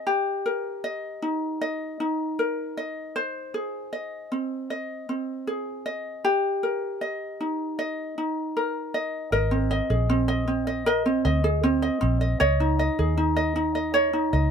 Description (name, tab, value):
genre	pop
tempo	78 BPM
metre	4/4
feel	straight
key	unclear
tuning	A4 = 443 Hz
part	ukulele	accompaniment	0.0-14.5 s	C4 to Eb5	-25 LUFS	equal	none
part	vintage muted fingered electric bass	bass	9.3-14.5 s	Ab1 to Eb2	-25 LUFS	equal	none
room	little or no reverb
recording	close, detailed microphones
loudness	-24 LUFS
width	side -7 dB against mid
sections	0.0-9.3 A section; 9.3-14.5 B section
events	none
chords	0.1 Eb; 3.2 Ab; 6.2 Eb; 9.3 Abadd9; 12.4 Dbsus2